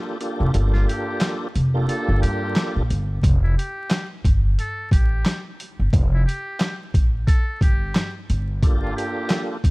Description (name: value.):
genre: hip hop, boom-bap hip-hop.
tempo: 89 BPM.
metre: 4/4.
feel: swing 58% on 16ths.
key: F major.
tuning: A4 = 439 Hz.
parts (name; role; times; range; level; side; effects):
tonewheel organ; accompaniment; 0.0-2.8, 8.6-9.6 s; Bb3 to A4; -27 LUFS; right 1 dB; chorus vibrato, slow rotary speaker, high-pass filter, low-pass filter.
boom bap sampler-style drum kit; drums; 0.2-9.7 s; handclaps, hi-hat, kick drum, snare drum; -20 LUFS; equal; vintage 12-bit sampler grit.
upright bass; bass; 0.4-9.7 s; F1 to G2; -20 LUFS; equal; none.
trumpet with metal mute; melody; 0.7-9.5 s; E4 to A4; -32 LUFS; equal; high-pass filter, low-pass filter, tape echo.
room: studio ambience.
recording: dark, warm production, vinyl crackle.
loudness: -19 LUFS.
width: side -23 dB against mid.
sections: 0.0-9.7 A section.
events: break 0.0-3.2.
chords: 0.0 Gm9; 3.2 Fadd9; 8.3 Gm9.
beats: | 0.54 1.21 1.89 2.56 | 3.23 3.91 4.58 5.26 | 5.93 6.60 7.28 7.95 | 8.63 9.30.